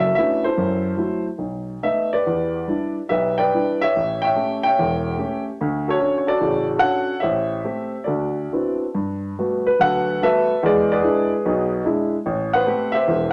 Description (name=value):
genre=solo jazz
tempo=145 BPM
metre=4/4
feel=swing 68% on 8ths, rubato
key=D major, G major from 9.0 s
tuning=A4 = 440 Hz
part: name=warm grand piano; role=solo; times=0.0-13.3 s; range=E1 to G5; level=-21 LUFS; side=equal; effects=none
room=wet studio reverb, RT60 0.8 s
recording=none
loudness=-21 LUFS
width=mono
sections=0.0-9.0 A section; 9.0-13.3 B section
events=none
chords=0.0 Bm11; 0.6 F#m7b5; 1.4 B7; 2.3 Em7; 4.0 A7; 5.6 Dmaj7; 7.2 Am7; 8.1 D13; 9.0 Gmaj9; 10.6 E7; 12.3 Am9